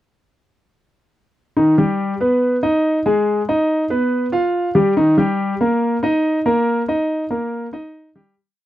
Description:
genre	jazz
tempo	141 BPM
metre	4/4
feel	straight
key	Eb major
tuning	A4 = 441 Hz
part	clear grand piano	solo	1.6-8.3 s	Eb3 to F5	-15 LUFS	equal	none
room	light reverb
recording	dry, close 1970s-style studio recording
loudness	-15 LUFS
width	side -14 dB against mid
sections	1.6-8.4 A section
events	fade-out 6.7-8.4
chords	1.6 Eb; 2.4 Abm; 4.1 G7; 5.0 Eb

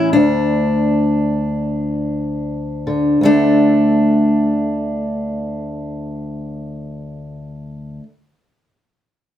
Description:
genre	folk, solo fingerstyle acoustic guitar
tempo	free time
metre	none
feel	none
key	unclear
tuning	A4 = 440 Hz
part	fingerpicked steel-string acoustic guitar	solo	0.0-8.0 s	D2 to E4	-16 LUFS	equal	none
room	light reverb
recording	close, detailed microphones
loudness	-14 LUFS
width	side -11 dB against mid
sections	0.0-3.2 A section; 3.2-6.6 B section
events	slowing down 0.0-3.2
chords	0.1 N.C.; 3.2 D5

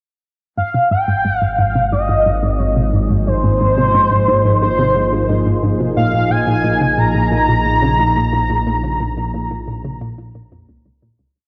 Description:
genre	ambient, sequencer-driven space music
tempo	89 BPM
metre	4/4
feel	straight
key	unclear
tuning	A4 = 440 Hz
part	pulse-width lead	melody	0.6-10.7 s	C5 to Bb5	-19 LUFS	equal	chorus, vintage 12-bit sampler grit, tape echo
part	sweeping resonant pad	sustained chords	0.6-11.4 s	F3 to Ab4	-25 LUFS	equal	chorus
part	resonant blip pluck	riff	0.6-11.3 s	Db2 to Db3	-21 LUFS	equal	chorus, tape echo
part	analog drone	bass	1.3-11.3 s	Ab1 to Bb1	-24 LUFS	equal	chorus
room	wet spring reverb, RT60 2.9 s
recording	echo-heavy mix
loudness	-16 LUFS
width	mono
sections	0.6-11.4 A section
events	fade-in on analog synth pad 0.6-11.4; filter sweep on synth arpeggio sound 0.6-11.4; fade-out 7.8-11.4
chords	0.6 Ab6; 6.0 Bbm7

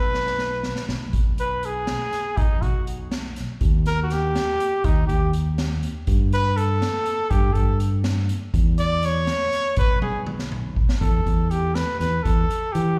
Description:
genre	progressive instrumental, band music in an uneven meter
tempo	243 BPM (eighths)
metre	5/8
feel	straight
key	unclear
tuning	A4 = 439 Hz
part	warm trumpet	melody	0.0-13.0 s	D#4 to D5	-27 LUFS	equal	slapback echo
part	fingered electric bass	bass	0.0-13.0 s	B1 to E3	-26 LUFS	equal	none
part	street-band drum kit	drums	0.1-12.9 s	hi-hat, kick drum, snare drum, toms	-26 LUFS	equal	none
room	studio ambience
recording	live gig heard through the venue's PA, club reverb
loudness	-22 LUFS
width	mono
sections	0.0-1.1 A section; 1.1-11.0 B section; 11.0-13.0 C section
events	drum fill 0.0-1.1, 10.0-11.0; trumpet solo 1.1-11.0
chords	0.0 N.C.; 1.1 B5; 3.6 D#; 6.1 Gsus2; 8.5 C#m/E; 9.8 N.C.; 11.0 Emadd11

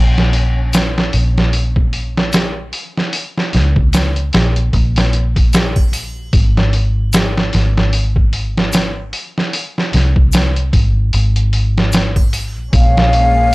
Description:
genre	trip hop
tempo	75 BPM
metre	4/4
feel	swing 58% on 16ths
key	Bb minor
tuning	A4 = 440 Hz
part	vintage muted fingered electric bass	bass	0.0-13.5 s	Ab1 to Db2	-15 LUFS	equal	none
part	trip hop sampler-style drum kit	drums	0.2-13.4 s	hi-hat, kick drum, snare drum	-14 LUFS	equal	vintage 12-bit sampler grit
part	egg shaker and triangle	percussion	0.7-12.5 s	none	-31 LUFS	left 2 dB	none
part	muted chamber string section	sustained chords	12.7-13.5 s	Ab3 to Db4	-23 LUFS	left 2 dB	none
part	breathy mellow concert flute	melody	12.8-13.5 s	F5	-14 LUFS	left 1 dB	none
room	digital ambience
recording	dry, gritty hardware recording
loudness	-12 LUFS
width	side -22 dB against mid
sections	0.0-13.5 A section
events	none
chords	0.0 Bbm; 6.3 N.C.; 12.7 Bbm7

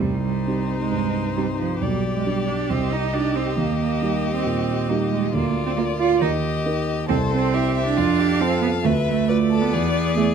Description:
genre	quick classical-period movement for piano quartet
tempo	136 BPM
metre	4/4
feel	rubato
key	C minor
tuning	A4 = 440 Hz
part	clear violin	melody	0.0-10.3 s	C5 to F5	-29 LUFS	left 10 dB	none
part	rich cello	second line	0.0-10.2 s	F3 to F4	-23 LUFS	right 9 dB	none
part	rich violin	second line	0.0-10.3 s	Eb4 to B4	-30 LUFS	left 2 dB	none
part	dark grand piano	accompaniment	0.0-10.3 s	B1 to C5	-23 LUFS	right 1 dB	none
room	moderate recital hall reverb, RT60 1.5 s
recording	close, detailed microphones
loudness	-19 LUFS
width	side -7 dB against mid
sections	0.0-10.3 A section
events	none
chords	0.0 Cm; 1.8 G/B; 2.7 Cm; 3.6 Eb; 5.3 Bb/D; 6.2 Eb; 7.1 C; 8.0 F; 8.8 Bm7b5/D; 9.7 E

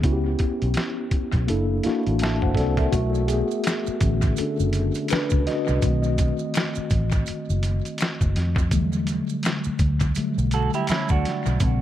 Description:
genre	R&B, neo-soul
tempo	83 BPM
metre	4/4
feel	swing 58% on 16ths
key	unclear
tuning	A4 = 437 Hz
part	mellow tine electric piano	accompaniment	0.0-11.8 s	C#3 to A5	-25 LUFS	left 2 dB	medium stereo tremolo, analog delay
part	vintage muted fingered electric bass	bass	0.0-11.8 s	F#1 to E#2	-23 LUFS	equal	none
part	boom bap sampler-style drum kit	drums	0.0-11.8 s	hi-hat, kick drum, snare drum	-25 LUFS	equal	analog delay
part	maracas and finger snaps	percussion	2.9-11.8 s	none	-38 LUFS	right 1 dB	analog delay
part	semi-hollow electric guitar	second line	10.5-11.6 s	C#4 to A4	-26 LUFS	right 7 dB	lush chorus, analog delay
room	light reverb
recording	echo-heavy mix, vinyl crackle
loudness	-20 LUFS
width	side -12 dB against mid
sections	0.0-2.9 A section; 2.9-11.8 B section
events	tine electric piano solo 2.9-11.8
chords	0.0 C#m7b5; 1.5 F#7alt; 2.9 Bm7; 5.8 B7b9; 8.7 Em11

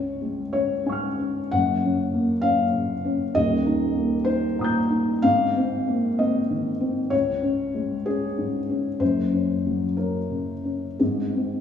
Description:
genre	neoclassical minimalist piano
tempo	53-67 BPM (dotted quarters)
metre	6/8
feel	rubato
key	Ab major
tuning	A4 = 439 Hz
part	felt-muted upright piano	solo	0.0-11.6 s	Eb1 to G6	-21 LUFS	left 1 dB	none
room	wet scoring stage reverb, RT60 1.9 s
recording	recorded in a church or concert hall, small room ambience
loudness	-21 LUFS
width	side -8 dB against mid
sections	0.0-11.6 A section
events	none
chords	0.0 Db; 1.5 Gb; 3.4 Eb; 5.2 Abadd9; 7.1 Db5; 9.0 Gb; 11.0 Ab

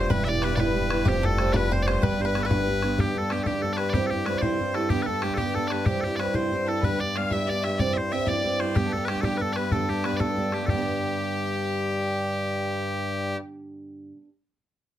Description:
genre	celtic folk, Celtic jig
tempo	125 BPM (dotted quarters)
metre	6/8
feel	straight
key	G mixolydian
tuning	A4 = 440 Hz
part	loud bright bagpipes	melody	0.0-13.4 s	G2 to F5	-26 LUFS	left 1 dB	none
part	bluegrass banjo	second line	0.0-2.7 s	G4 to D5	-36 LUFS	right 3 dB	none
part	rich fiddle	second line	0.0-13.3 s	G4 to F5	-35 LUFS	left 4 dB	none
part	picked steel-string acoustic guitar	accompaniment	0.0-14.3 s	G2 to G4	-30 LUFS	right 4 dB	none
part	upright bass	bass	0.0-3.0 s	E1 to G1	-28 LUFS	equal	none
part	bodhran	percussion	0.1-10.8 s	none	-29 LUFS	left 1 dB	none
room	moderate small room reverb, RT60 0.5 s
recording	close, detailed microphones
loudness	-23 LUFS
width	side -12 dB against mid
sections	0.0-3.0 A section; 3.0-10.7 B section; 10.7-12.6 C section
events	none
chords	0.1 Em; 1.1 Fsus2; 2.0 G; 3.9 C; 4.9 G; 5.9 C; 6.8 G; 7.8 C; 8.8 G

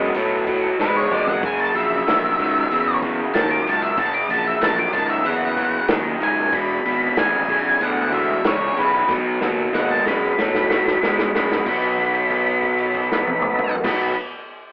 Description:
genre	blues rock power trio and southern rock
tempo	94 BPM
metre	4/4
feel	straight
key	B mixolydian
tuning	A4 = 440 Hz
part	overdriven tonewheel organ	sustained chords	0.0-14.1 s	A#3 to A#4	-31 LUFS	equal	none
part	overdriven electric guitar	riff	0.0-14.2 s	E2 to B3	-21 LUFS	equal	none
part	fuzz fingered electric bass	bass	0.0-14.1 s	E1 to A2	-26 LUFS	equal	overdrive
part	vintage drum kit	drums	0.1-14.0 s	crash cymbal, hi-hat, kick drum, snare drum, toms	-25 LUFS	equal	none
part	octave-fuzz lead guitar	melody	0.8-14.1 s	B4 to D6	-20 LUFS	equal	distortion
room	moderate large studio reverb, RT60 1.1 s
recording	band playing live in one room, telephone sound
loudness	-17 LUFS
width	side -29 dB against mid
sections	0.0-11.7 A section; 11.7-14.2 B section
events	drum fill 0.8-1.4, 9.1-11.7; held note 11.7-13.8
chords	0.0 B7; 1.4 F#7; 6.5 E7; 9.1 B7

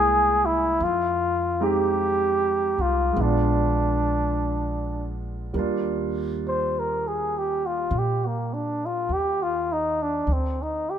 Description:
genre	jazz ballad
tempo	51 BPM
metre	4/4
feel	swing 67% on 8ths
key	Eb major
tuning	A4 = 440 Hz
part	breathy flugelhorn	melody	0.0-11.0 s	Bb3 to C5	-23 LUFS	equal	none
part	clear concert grand piano	accompaniment	0.0-10.3 s	G3 to G5	-29 LUFS	right 3 dB	none
part	upright bass	bass	0.0-11.0 s	Bb1 to Bb2	-29 LUFS	equal	none
room	light reverb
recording	minimal, uncompressed stereo recording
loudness	-22 LUFS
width	side -9 dB against mid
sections	0.0-5.5 A section; 5.5-11.0 B section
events	flugelhorn solo 5.5-11.0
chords	0.0 C7b13; 0.8 Fm7; 3.2 Bb7b9; 5.5 Ebmaj9; 10.3 D7(no3)

